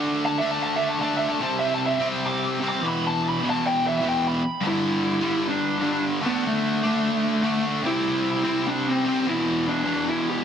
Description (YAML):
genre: rock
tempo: 149 BPM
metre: 4/4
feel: straight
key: E minor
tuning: A4 = 440 Hz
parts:
  - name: cranked stack guitar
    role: riff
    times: 0.0-10.4 s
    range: E2 to D4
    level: -24 LUFS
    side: equal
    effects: overdrive
  - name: lead guitar through a small cranked amp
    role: melody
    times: 0.3-10.4 s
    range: A3 to D6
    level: -24 LUFS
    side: equal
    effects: overdrive
room: moderate large studio reverb, RT60 1.4 s, digital ambience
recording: dense, heavily limited modern master, lossy compression artefacts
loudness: -21 LUFS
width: side -8 dB against mid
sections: 0.0-4.6 A section; 4.6-10.4 B section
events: lead electric guitar solo 0.0-4.6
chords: 0.0 D5; 1.4 C5; 2.8 E5; 4.6 G5; 6.2 D5; 7.8 C; 9.3 E5